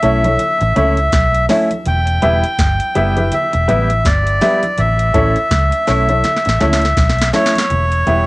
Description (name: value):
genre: roots reggae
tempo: 82 BPM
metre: 4/4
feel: swing 59% on 16ths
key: unclear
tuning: A4 = 440 Hz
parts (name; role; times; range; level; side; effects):
- melodica; melody; 0.0-8.3 s; C#5 to G5; -16 LUFS; equal; cassette tape, tape echo
- semi-hollow electric guitar; accompaniment; 0.0-8.3 s; G3 to E4; -22 LUFS; right 1 dB; cassette tape, tape echo, plate reverb
- warm upright piano; stabs; 0.0-8.3 s; E4 to E5; -18 LUFS; left 1 dB; cassette tape, plate reverb
- vintage muted fingered electric bass; bass; 0.0-8.3 s; E1 to C#2; -17 LUFS; equal; tube saturation
- soft vintage rhythm box; drums; 0.0-8.3 s; hi-hat, kick drum, snare drum; -18 LUFS; equal; cassette tape
- congas; percussion; 0.2-8.3 s; none; -27 LUFS; right 2 dB; none
room: moderate booth ambience, RT60 0.3 s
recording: home recording on cassette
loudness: -12 LUFS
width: side -21 dB against mid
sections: 0.0-7.7 A section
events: drum fill 6.2-7.7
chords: 0.0 A; 1.9 Em; 4.8 A; 7.7 Em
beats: 0.39 1.12 | 1.86 2.59 3.32 4.05 | 4.78 5.51 6.24 6.97 | 7.70